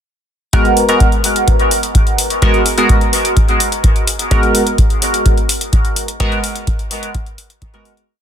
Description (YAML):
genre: dub techno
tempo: 127 BPM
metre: 4/4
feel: straight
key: G# minor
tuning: A4 = 442 Hz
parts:
  - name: resonant sweep polysynth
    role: stabs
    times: 0.5-7.9 s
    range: G#3 to A#4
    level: -15 LUFS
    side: equal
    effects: chorus, phaser, sidechain pumping, dub echo
  - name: electronic hi-hat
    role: drums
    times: 0.5-8.1 s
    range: none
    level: -19 LUFS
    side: left 2 dB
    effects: none
  - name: electronic kick drum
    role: drums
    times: 0.5-7.7 s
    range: none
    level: -14 LUFS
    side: equal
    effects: none
room: light reverb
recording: dense, heavily limited modern master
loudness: -11 LUFS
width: side -9 dB against mid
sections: 0.5-8.1 groove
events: fade-out 5.6-8.1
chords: 0.5 G#m9